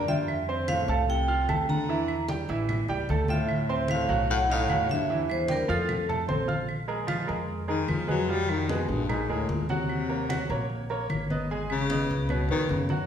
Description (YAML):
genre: Afro-Cuban jazz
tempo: 150 BPM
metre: 4/4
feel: straight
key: Bb minor from 6.7 s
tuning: A4 = 440 Hz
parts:
  - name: vibraphone with medium hard mallets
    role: melody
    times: 0.0-6.5 s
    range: A4 to Bb5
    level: -29 LUFS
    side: right 2 dB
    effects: none
  - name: breathy baritone saxophone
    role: second line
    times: 0.0-12.9 s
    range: C2 to G3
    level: -30 LUFS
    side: left 3 dB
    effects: none
  - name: clear baby grand piano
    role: accompaniment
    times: 0.0-13.1 s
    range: E3 to F6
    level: -31 LUFS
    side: right 3 dB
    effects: none
  - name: upright bass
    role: bass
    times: 0.0-13.1 s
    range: Ab1 to Gb2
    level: -32 LUFS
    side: equal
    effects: none
  - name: congas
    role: percussion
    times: 0.1-13.1 s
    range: none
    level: -33 LUFS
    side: left 1 dB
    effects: none
  - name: claves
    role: percussion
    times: 0.3-12.5 s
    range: none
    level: -41 LUFS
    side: right 2 dB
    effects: none
room: wet recital hall reverb, RT60 1.3 s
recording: recorded in a church or concert hall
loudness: -25 LUFS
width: side -8 dB against mid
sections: 0.0-6.7 A section; 6.7-13.1 B section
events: drum fill 6.5; baritone saxophone solo 6.7-13.1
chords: 0.3 Fadd9; 1.9 Em7b5; 2.7 A7; 3.5 Dm7; 4.3 B7; 5.1 Cadd11; 5.9 F; 6.7 Bb5; 9.1 Bb7; 9.9 Ebm7; 11.5 Abm; 12.3 Db7